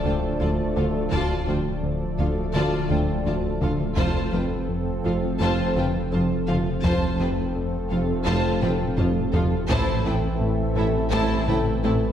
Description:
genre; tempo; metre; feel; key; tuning
cinematic, hybrid orchestral and electronic film score; 84 BPM; 4/4; straight; D minor; A4 = 440 Hz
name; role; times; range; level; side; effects
warm symphonic violin section; melody; 0.0-11.9 s; E5 to A5; -34 LUFS; left 2 dB; none
rich symphonic violin section; second line; 0.0-11.9 s; A4 to D5; -34 LUFS; equal; none
rich symphonic viola section; accompaniment; 0.0-11.9 s; E4 to F4; -33 LUFS; right 1 dB; none
mellow French horn section; sustained chords; 0.0-12.1 s; C4 to A4; -32 LUFS; left 4 dB; none
warm analog pad; sustained chords; 0.0-12.1 s; E3 to E5; -31 LUFS; right 1 dB; wide subtle chorus
warm trombone section; sustained chords; 0.0-12.1 s; E3 to A3; -34 LUFS; right 2 dB; none
thumb-piano-like synth pluck; arpeggios; 0.0-12.1 s; D3 to A4; -35 LUFS; right 2 dB; none
fat analog bass; riff; 0.0-12.1 s; D2 to F3; -28 LUFS; left 1 dB; none
dark tuba; bass; 0.0-12.0 s; F1 to D2; -32 LUFS; right 2 dB; none
saturated sub bass; bass; 0.0-12.1 s; D1 to A1; -32 LUFS; equal; none
solo taiko drums; drums; 0.0-11.8 s; none; -30 LUFS; equal; none
impact; sound effects; 0.0-1.1 s; none; barely audible; none; none
rich symphonic cello section; bass; 0.1-11.9 s; D2 to A2; -31 LUFS; right 2 dB; none
rich symphonic double bass section; bass; 0.1-11.9 s; F1 to D2; -32 LUFS; right 2 dB; none
room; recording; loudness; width
wet scoring stage reverb, RT60 1.8 s; heard from further back in the room; -21 LUFS; side -9 dB against mid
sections
0.0-12.1 A section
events
impact 0.0-1.1; drum fill 8.6-9.7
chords
0.0 Dm; 4.0 F; 9.7 Am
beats
0.41 | 1.13 1.84 2.56 3.27 | 3.98 4.70 5.41 6.13 | 6.84 7.56 8.27 8.98 | 9.70 10.41 11.13 11.84

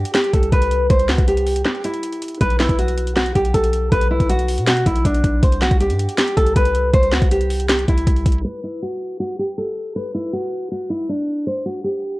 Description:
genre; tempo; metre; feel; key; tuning
hip hop, trap; 159 BPM; 4/4; half-time; unclear; A4 = 439 Hz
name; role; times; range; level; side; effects
nylon-string guitar; melody; 0.0-12.2 s; D4 to C5; -20 LUFS; equal; low-pass filter
warm 808-style bass; bass; 0.0-8.4 s; B1 to B2; -20 LUFS; equal; none
trap drum kit; drums; 0.1-12.1 s; finger snaps, hi-hat, kick drum, snare drum; -19 LUFS; equal; none
room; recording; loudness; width
digital ambience; worn, warbling old tape, cassette tape, warbly pitch drift, low-pass filter; -16 LUFS; side -20 dB against mid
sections
0.0-8.4 A section; 8.4-12.2 B section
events
break 1.7-2.4; filter sweep 8.4-12.2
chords
0.0 C; 2.4 B5; 5.4 C5; 8.4 N.C.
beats
0.14 0.52 | 0.90 1.28 1.65 2.03 | 2.41 2.79 3.16 3.54 | 3.92 4.30 4.67 5.05 | 5.43 5.80 6.18 6.56 | 6.94 7.32 7.69 8.07 | 8.45 8.82 9.20 9.58 | 9.96 10.33 10.71 11.09 | 11.47 11.84

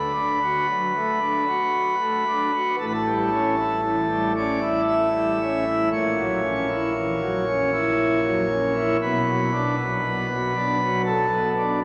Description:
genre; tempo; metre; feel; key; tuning
classical, chorale-style piece for pipe organ; 58 BPM; 3/4; rubato; D major; A4 = 440 Hz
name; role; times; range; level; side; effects
pipe organ, principal chorus; solo; 0.0-11.8 s; A1 to E5; -23 LUFS; equal; none
room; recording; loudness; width
wet cathedral reverb, RT60 5.8 s; none; -23 LUFS; mono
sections
0.0-11.8 A section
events
none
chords
0.0 D; 2.8 A7; 5.9 F#7/A#; 9.0 Bm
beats
0.69 1.74 | 2.79 3.84 4.89 | 5.93 6.96 7.99 | 9.01 10.03 11.05

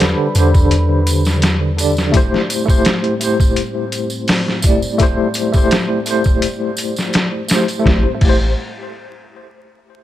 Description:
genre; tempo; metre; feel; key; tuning
trip hop; 84 BPM; 4/4; straight; A minor; A4 = 440 Hz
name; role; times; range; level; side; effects
tine electric piano; accompaniment; 0.0-8.5 s; D3 to D5; -18 LUFS; equal; overdrive, medium stereo tremolo, tape echo
dark analog pad; sustained chords; 0.0-8.2 s; A3 to B5; -28 LUFS; left 1 dB; chorus
soft 808-style bass; bass; 0.0-2.1, 7.9-8.5 s; A1 to E2; -15 LUFS; equal; tube saturation
trip hop sampler-style drum kit; drums; 0.0-8.4 s; crash cymbal, hi-hat, kick drum, snare drum; -15 LUFS; equal; vintage 12-bit sampler grit
tambourine; percussion; 0.3-7.8 s; none; -27 LUFS; right 3 dB; none
room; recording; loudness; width
little or no reverb; vinyl crackle; -13 LUFS; side -13 dB against mid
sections
0.0-7.9 A section; 7.9-10.0 B section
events
none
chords
0.0 D7sus4; 2.1 Am7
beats
0.00 0.71 1.43 | 2.14 2.85 3.57 4.28 | 5.00 5.71 6.42 7.14 | 7.85

